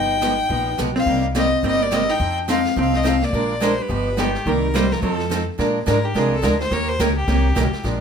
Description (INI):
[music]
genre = country, western swing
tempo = 213 BPM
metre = 4/4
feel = swing 60% on 8ths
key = Bb mixolydian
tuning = A4 = 440 Hz
[part]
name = clear fiddle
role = melody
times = 0.0-7.8 s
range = G4 to G5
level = -23 LUFS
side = left 2 dB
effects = plate reverb
[part]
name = vintage hollow-body jazz guitar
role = second line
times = 0.0-5.4 s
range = D#3 to Eb4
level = -24 LUFS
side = left 1 dB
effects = none
[part]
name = picked steel-string acoustic guitar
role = accompaniment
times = 0.0-8.0 s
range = C3 to Bb4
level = -23 LUFS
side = right 3 dB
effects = none
[part]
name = upright bass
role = bass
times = 0.0-8.0 s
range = G1 to Bb2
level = -24 LUFS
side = equal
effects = none
[part]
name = jazz brush drum kit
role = drums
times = 0.2-8.0 s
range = brushed snare drum, hi-hat, kick drum, snare drum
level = -29 LUFS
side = equal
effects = none
[sound]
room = moderate studio ambience, RT60 0.5 s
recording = none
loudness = -17 LUFS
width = side -7 dB against mid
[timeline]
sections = 0.0-5.6 A section; 5.6-8.0 B section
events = fiddle solo 5.6-8.0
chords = 0.0 G7alt; 1.1 Cm7; 2.2 F7; 3.3 Bb7; 3.9 Gaug7; 4.5 Cm7; 5.0 F7; 5.6 Bb9; 6.7 Eb7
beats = 0.22 0.50 0.79 | 1.07 1.35 1.63 1.92 | 2.20 2.48 2.76 3.05 | 3.33 3.61 3.89 4.18 | 4.46 4.74 5.02 5.30 | 5.59 5.87 6.15 6.43 | 6.71 6.99 7.28 7.56 | 7.84